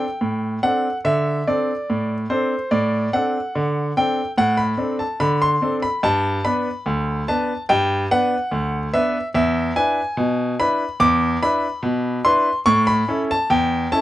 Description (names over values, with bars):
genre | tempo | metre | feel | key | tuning
ragtime piano | 72 BPM | 2/4 | straight | unclear | A4 = 440 Hz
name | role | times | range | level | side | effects
bright grand piano | solo | 0.0-14.0 s | D2 to D6 | -18 LUFS | equal | none
room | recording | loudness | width
little or no reverb | close, detailed microphones | -18 LUFS | side -14 dB against mid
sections
0.0-14.0 A section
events
none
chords
0.0 D7/A; 6.0 G; 9.3 E7; 12.7 A